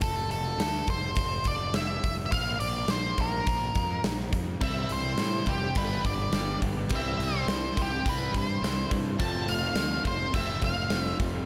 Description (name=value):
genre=quiet-loud alternative rock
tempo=105 BPM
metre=4/4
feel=straight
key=unclear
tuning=A4 = 443 Hz
part: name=octave-fuzz lead guitar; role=melody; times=0.0-11.2 s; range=G4 to A5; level=-34 LUFS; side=equal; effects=distortion, slapback echo
part: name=fuzz picked electric bass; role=bass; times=0.0-11.4 s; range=F1 to A2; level=-36 LUFS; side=equal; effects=overdrive
part: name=huge arena drum kit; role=drums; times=0.0-11.3 s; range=hi-hat, kick drum, snare drum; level=-33 LUFS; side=equal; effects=none
part: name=electric guitar through a small old amp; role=arpeggios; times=4.6-11.5 s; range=F2 to G4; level=-38 LUFS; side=equal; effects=harmonic tremolo
part: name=fuzz guitar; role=riff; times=4.6-11.5 s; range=G2 to C4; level=-37 LUFS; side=equal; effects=distortion, slapback echo
room=moderate concert hall reverb, RT60 2.1 s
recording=big arena sound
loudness=-29 LUFS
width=mono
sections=0.0-11.5 A section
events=none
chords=0.0 F; 2.3 Bb5; 4.6 C; 5.8 G; 6.9 C; 9.2 F